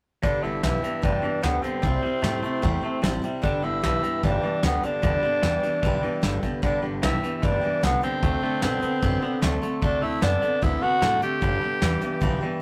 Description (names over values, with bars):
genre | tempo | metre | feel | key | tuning
rockabilly | 150 BPM | 4/4 | straight | G major | A4 = 437 Hz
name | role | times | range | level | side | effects
raspy tenor saxophone | melody | 0.2-12.6 s | B3 to G4 | -28 LUFS | equal | none
picked steel-string acoustic guitar | accompaniment | 0.2-12.6 s | G2 to A4 | -34 LUFS | equal | none
twangy electric guitar | riff | 0.2-12.6 s | G2 to B3 | -32 LUFS | equal | none
upright bass | bass | 0.2-12.4 s | G1 to B2 | -31 LUFS | equal | none
soft brush drum kit | drums | 0.2-12.3 s | hi-hat, kick drum, snare drum | -30 LUFS | equal | none
room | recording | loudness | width
light reverb | rough rehearsal-room recording, tube saturation | -24 LUFS | mono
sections
0.2-12.6 A section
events
none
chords
0.2 G; 1.8 C; 3.4 G; 8.2 D7; 11.4 G